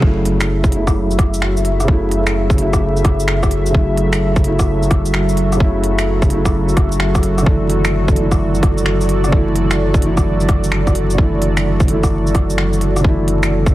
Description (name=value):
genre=future garage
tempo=129 BPM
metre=4/4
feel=swing 65% on 16ths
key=F# minor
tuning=A4 = 440 Hz
part: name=felt-muted upright piano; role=accompaniment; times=0.0-13.7 s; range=C#3 to E4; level=-19 LUFS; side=equal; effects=sidechain pumping, tape echo
part: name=airy breathy pad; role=sustained chords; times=0.0-13.7 s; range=F#3 to E5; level=-21 LUFS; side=right 1 dB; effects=chorus, sidechain pumping
part: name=warm sub bass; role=bass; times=0.0-13.7 s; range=F#1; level=-18 LUFS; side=equal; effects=sidechain pumping
part: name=electronic kick drum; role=drums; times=0.0-13.7 s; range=none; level=-14 LUFS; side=equal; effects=overdrive
part: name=organic electronic drum kit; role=drums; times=0.3-13.7 s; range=finger snaps, hi-hat, rim click, shaker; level=-23 LUFS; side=equal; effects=overdrive, soft clipping on snare
room=light reverb, digital ambience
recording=dense, heavily limited modern master, vinyl crackle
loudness=-13 LUFS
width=side -15 dB against mid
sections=0.0-13.7 A section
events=none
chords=0.0 F#m7; 7.5 Asus4/F#